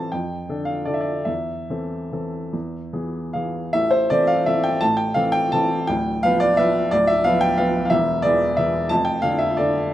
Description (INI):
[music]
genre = classical, piano waltz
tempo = 137-189 BPM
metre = 3/4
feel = rubato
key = A minor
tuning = A4 = 441 Hz
[part]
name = warm upright piano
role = solo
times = 0.0-9.9 s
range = D1 to A5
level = -18 LUFS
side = equal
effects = none
[sound]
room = light reverb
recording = close, detailed microphones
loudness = -18 LUFS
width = side -13 dB against mid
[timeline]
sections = 0.0-3.7 A section; 3.7-9.9 B section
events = none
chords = 0.1 Dm/F; 1.3 Am/E; 2.5 E; 3.7 Am; 5.9 Bdim/D; 7.9 E; 8.9 Dm/F